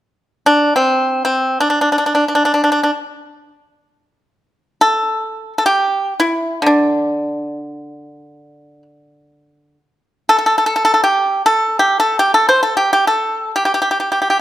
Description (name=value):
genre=chinese traditional, Chinese solo plucked strings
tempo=free time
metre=none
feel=none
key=D shang mode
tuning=A4 = 440 Hz
part: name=pipa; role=solo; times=0.5-14.4 s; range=D3 to C5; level=-13 LUFS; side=equal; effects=none
room=light reverb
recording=none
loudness=-13 LUFS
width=side -13 dB against mid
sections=0.0-14.4 A section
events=none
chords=none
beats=free time